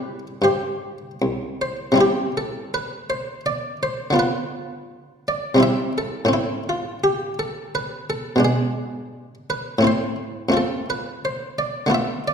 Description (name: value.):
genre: classical, baroque-style suite movement for harpsichord.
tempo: 84 BPM.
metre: 3/4.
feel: rubato.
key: C major.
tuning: A4 = 440 Hz.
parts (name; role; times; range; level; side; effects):
buff-stop harpsichord; solo; 0.0-12.3 s; C2 to E5; -20 LUFS; equal; none.
room: wet recital hall reverb, RT60 1.7 s.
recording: none.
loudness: -20 LUFS.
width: side -7 dB against mid.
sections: 0.0-2.0 A section; 2.0-12.3 B section.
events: none.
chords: 0.0 C; 4.2 Bdim/D; 5.6 C; 6.3 Am; 8.4 G#dim/B; 9.8 Am; 10.5 F.